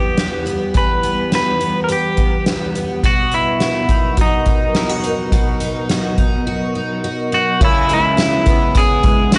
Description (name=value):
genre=dream pop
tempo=105 BPM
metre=4/4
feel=straight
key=B major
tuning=A4 = 440 Hz
part: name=electric guitar at the edge of break-up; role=melody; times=0.0-9.4 s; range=D#4 to B4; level=-21 LUFS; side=equal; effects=analog delay
part: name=ethereal airy pad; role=sustained chords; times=0.0-9.4 s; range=F#3 to F#5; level=-26 LUFS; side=equal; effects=ensemble chorus, built-in reverb, phaser
part: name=picked twelve-string acoustic guitar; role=arpeggios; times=0.0-9.4 s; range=E2 to G4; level=-24 LUFS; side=equal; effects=analog chorus, analog delay
part: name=soft-mallet drum kit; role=drums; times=0.2-9.4 s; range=crash cymbal, hi-hat, kick drum, snare drum, tambourine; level=-20 LUFS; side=equal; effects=none
room=small room ambience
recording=dry, gritty hardware recording, nothing above 10.5 kHz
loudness=-16 LUFS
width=mono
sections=0.0-7.6 A section; 7.6-9.4 B section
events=none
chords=0.0 Em; 3.0 Bmaj7; 7.6 C#m7